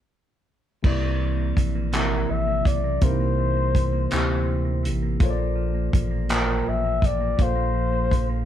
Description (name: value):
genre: slow six-eight R&B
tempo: 55 BPM (dotted quarters)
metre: 6/8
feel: straight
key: unclear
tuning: A4 = 439 Hz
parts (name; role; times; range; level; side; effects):
- clean electric guitar; second line; 0.8-8.5 s; Bb2 to Bb3; -29 LUFS; right 6 dB; none
- tine electric piano; accompaniment; 0.8-8.5 s; C3 to A5; -29 LUFS; left 3 dB; overdrive
- warm sub bass; bass; 0.8-8.5 s; A1 to D2; -26 LUFS; equal; none
- warm soul drum kit; drums; 0.8-8.3 s; crash cymbal, handclaps, hi-hat, kick drum; -23 LUFS; equal; none
- breathy flugelhorn; melody; 2.0-8.5 s; Bb4 to E5; -27 LUFS; left 4 dB; none
room: light reverb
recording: band playing live in one room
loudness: -20 LUFS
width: side -10 dB against mid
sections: 0.8-8.5 A section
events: stop 0.0-0.8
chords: 0.0 N.C.; 0.8 C9; 5.2 Gm11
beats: | 0.84 1.93 | 3.02 4.11 | 5.21 6.30 | 7.39